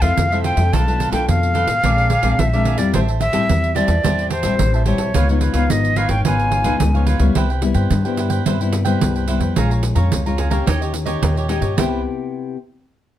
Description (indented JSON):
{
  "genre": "samba and choro",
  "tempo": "109 BPM",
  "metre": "4/4",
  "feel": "straight",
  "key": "unclear",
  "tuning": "A4 = 440 Hz",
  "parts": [
    { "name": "silver concert flute", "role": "melody", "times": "0.0-7.0 s", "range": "C5 to A5", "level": "-20 LUFS", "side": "equal", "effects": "slapback echo" },
    { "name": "cavaquinho", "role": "accompaniment", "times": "0.0-12.0 s", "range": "D4 to Bb5", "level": "-26 LUFS", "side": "right 7 dB", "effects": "none" },
    { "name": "nylon-string guitar", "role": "accompaniment", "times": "0.0-12.6 s", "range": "F2 to G4", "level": "-22 LUFS", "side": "left 5 dB", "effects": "none" },
    { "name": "upright bass", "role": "bass", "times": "0.0-12.0 s", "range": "Ab1 to G2", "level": "-19 LUFS", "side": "equal", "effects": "none" },
    { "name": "pandeiro", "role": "percussion", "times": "0.0-11.9 s", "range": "none", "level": "-23 LUFS", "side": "right 6 dB", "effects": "none" }
  ],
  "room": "light reverb",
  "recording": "dark, warm production",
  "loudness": "-15 LUFS",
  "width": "side -12 dB against mid",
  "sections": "0.0-7.4 A section; 7.4-11.8 B section; 11.8-13.2 C section",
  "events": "none",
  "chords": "0.0 Fmaj7; 0.7 Bm7b5; 1.8 Bb9; 2.9 Am7; 5.1 Db9; 7.4 Cmaj7; 9.6 Bbm7; 10.7 Eb7; 11.8 Cmaj7",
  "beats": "0.18 | 0.73 1.28 1.84 2.39 | 2.94 3.49 4.04 4.60 | 5.15 5.70 6.25 6.80 | 7.36 7.91 8.46 9.01 | 9.57 10.12 10.67 11.23 | 11.78 12.33"
}